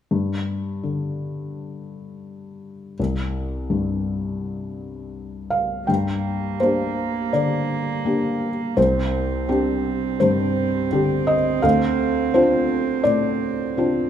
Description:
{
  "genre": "neoclassical piano and strings",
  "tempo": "84 BPM",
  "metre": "4/4",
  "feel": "rubato",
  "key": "G minor",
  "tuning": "A4 = 440 Hz",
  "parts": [
    { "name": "felt-muted upright piano", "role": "accompaniment", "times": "0.1-14.1 s", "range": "C2 to G5", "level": "-21 LUFS", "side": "left 2 dB", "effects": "none" },
    { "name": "warm cello", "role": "second line", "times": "5.9-14.1 s", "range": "Bb3 to C4", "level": "-25 LUFS", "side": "right 12 dB", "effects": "none" }
  ],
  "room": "moderate recital hall reverb, RT60 1.4 s",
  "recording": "minimal, uncompressed stereo recording",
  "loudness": "-19 LUFS",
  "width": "side -9 dB against mid",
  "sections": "0.1-5.9 A section; 5.9-14.1 B section",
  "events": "none",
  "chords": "0.1 G5; 3.0 C5; 5.9 Gm; 8.8 Csus2; 11.6 Dm7",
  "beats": "| 0.11 0.84 1.56 2.28 | 2.99 3.70 4.41 5.14 | 5.88 6.61 7.33 8.05 | 8.77 9.49 10.21 10.92 | 11.64 12.35 13.06 13.78"
}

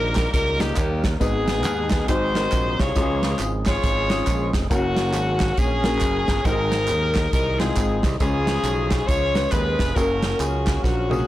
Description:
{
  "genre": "uptempo gospel",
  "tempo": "137 BPM",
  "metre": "4/4",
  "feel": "swing 61% on 8ths",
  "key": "F# major",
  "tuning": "A4 = 439 Hz",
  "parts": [
    { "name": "clear saxophone section", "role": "melody", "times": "0.0-11.3 s", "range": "A#3 to C#5", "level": "-24 LUFS", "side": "left 2 dB", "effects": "none" },
    { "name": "warm upright piano", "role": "accompaniment", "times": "0.0-11.3 s", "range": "G#2 to B4", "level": "-27 LUFS", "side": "left 3 dB", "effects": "none" },
    { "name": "tonewheel organ", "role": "sustained chords", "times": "0.0-11.3 s", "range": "D#3 to B4", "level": "-34 LUFS", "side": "right 2 dB", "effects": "none" },
    { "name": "modern bright fingered electric bass", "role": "bass", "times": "0.0-11.2 s", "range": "E#1 to D#2", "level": "-25 LUFS", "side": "right 1 dB", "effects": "transformer saturation" },
    { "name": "natural country drum kit", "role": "drums", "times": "0.2-11.3 s", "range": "hi-hat, kick drum, snare drum, toms", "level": "-24 LUFS", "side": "right 1 dB", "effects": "none" },
    { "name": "handclaps and tambourine", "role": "percussion", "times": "0.2-11.2 s", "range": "none", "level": "-36 LUFS", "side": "right 3 dB", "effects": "none" }
  ],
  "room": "little or no reverb",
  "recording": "blown-out, overdriven recording, overdrive",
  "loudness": "-19 LUFS",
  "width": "side -14 dB against mid",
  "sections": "0.0-11.3 A section",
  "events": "drum fill 10.8-11.3",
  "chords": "0.0 D#; 1.2 G#m; 2.1 G#7; 3.0 C#; 4.7 F#; 6.5 G#; 8.2 C#; 10.0 F#",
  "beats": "0.34 0.78 | 1.21 1.65 2.09 2.52 | 2.96 3.40 3.84 4.27 | 4.71 5.15 5.59 6.02 | 6.46 6.90 7.33 7.77 | 8.21 8.65 9.09 9.52 | 9.96 10.40 10.84"
}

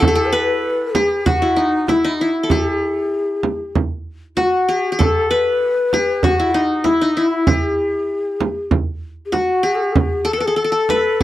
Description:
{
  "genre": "Arabic maqam ensemble",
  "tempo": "97 BPM",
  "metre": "4/4",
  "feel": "straight",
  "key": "unclear",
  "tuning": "A4 = 439 Hz",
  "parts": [
    { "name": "qanun", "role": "melody", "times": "0.0-11.2 s", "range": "D#4 to B4", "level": "-18 LUFS", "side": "left 1 dB", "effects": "none" },
    { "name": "breathy mellow ney", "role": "second line", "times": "0.0-11.2 s", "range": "D#4 to C5", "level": "-20 LUFS", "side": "left 3 dB", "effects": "none" },
    { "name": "frame drum", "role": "percussion", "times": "0.0-11.2 s", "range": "none", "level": "-18 LUFS", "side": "right 3 dB", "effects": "none" }
  ],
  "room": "little or no reverb",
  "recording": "dry, close 1970s-style studio recording",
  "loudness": "-15 LUFS",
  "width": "side -14 dB against mid",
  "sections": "0.0-11.2 A section",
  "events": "none",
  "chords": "none",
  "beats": "| 0.02 0.64 1.26 1.88 | 2.50 3.12 3.75 4.37 | 4.99 5.61 6.23 6.85 | 7.47 8.09 8.71 9.34 | 9.96 10.58 11.20"
}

